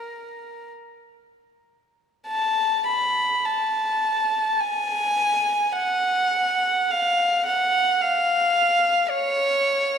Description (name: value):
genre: classical, free, expressive piece for unaccompanied violin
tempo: 31-58 BPM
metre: 4/4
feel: rubato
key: F# minor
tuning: A4 = 440 Hz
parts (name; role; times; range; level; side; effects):
- dark violin; solo; 0.0-10.0 s; Bb4 to B5; -20 LUFS; equal; none
room: wet church reverb, RT60 3.3 s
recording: minimal, uncompressed stereo recording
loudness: -19 LUFS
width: side -7 dB against mid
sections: 0.0-2.3 A section; 2.3-10.0 B section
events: none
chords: none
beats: 0.69 | 2.25 3.46 4.59 5.73 | 6.90 8.02 9.11